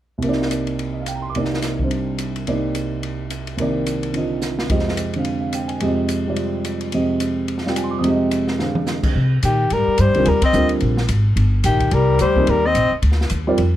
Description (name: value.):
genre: modal jazz.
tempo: 216 BPM.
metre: 4/4.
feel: swing 59% on 8ths.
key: C minor.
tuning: A4 = 440 Hz.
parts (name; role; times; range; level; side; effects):
warm concert grand piano; accompaniment; 0.2-13.6 s; C2 to Eb6; -20 LUFS; right 2 dB; none.
open jazz drum kit; drums; 0.2-13.7 s; crash cymbal, hi-hat, kick drum, ride cymbal, snare drum, toms; -27 LUFS; equal; none.
upright bass; bass; 9.1-13.8 s; G1 to C3; -18 LUFS; equal; none.
warm soprano saxophone; melody; 9.4-12.9 s; G4 to Eb5; -18 LUFS; equal; none.
breathy tenor saxophone; second line; 9.4-12.9 s; Eb3 to C4; -21 LUFS; left 7 dB; none.
room: light reverb.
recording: none.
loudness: -17 LUFS.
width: side -13 dB against mid.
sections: 0.2-9.2 A section; 9.2-13.8 B section.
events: drum fill 4.4, 8.6; band accent 10.4.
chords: 0.2 Cm9; 4.7 Fm9; 9.2 Cm9.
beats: | 0.24 0.52 0.80 1.08 | 1.36 1.64 1.92 2.19 | 2.47 2.75 3.03 3.31 | 3.59 3.87 4.15 4.42 | 4.70 4.98 5.26 5.54 | 5.82 6.09 6.37 6.65 | 6.93 7.21 7.49 7.76 | 8.04 8.32 8.60 8.87 | 9.15 9.43 9.71 9.98 | 10.26 10.54 10.82 11.09 | 11.37 11.65 11.93 12.20 | 12.48 12.76 13.04 13.31 | 13.59.